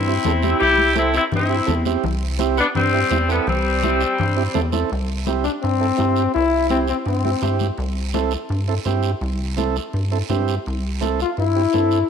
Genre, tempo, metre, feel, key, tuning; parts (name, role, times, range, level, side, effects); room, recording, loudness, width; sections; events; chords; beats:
latin, cumbia; 167 BPM; 4/4; straight; C major; A4 = 440 Hz
bright saxophone section; melody; 0.0-4.7 s; G3 to G4; -19 LUFS; left 1 dB
bright trombone; second line; 0.0-7.6, 11.2-12.1 s; G3 to F4; -22 LUFS; left 6 dB
rubbery square bass; bass; 0.0-12.0 s; C2 to G2; -22 LUFS; equal
combo organ; accompaniment; 0.1-12.0 s; C4 to A4; -25 LUFS; right 9 dB
congas; percussion; 0.2-11.9 s; -30 LUFS; left 8 dB
guiro; percussion; 0.2-12.1 s; -34 LUFS; right 12 dB
wet echo chamber reverb, RT60 2.0 s; 1960s-style stereo with parts hard left and right; -17 LUFS; side -7 dB against mid
0.0-4.9 A section; 4.9-12.1 B section
trombone solo 4.9-12.1
0.0 C
0.26 | 0.61 0.97 1.33 1.69 | 2.04 2.40 2.76 3.12 | 3.47 3.83 4.19 4.55 | 4.91 5.27 5.62 5.99 | 6.34 6.70 7.06 7.42 | 7.78 8.14 8.50 8.86 | 9.22 9.58 9.94 10.30 | 10.66 11.02 11.38 11.74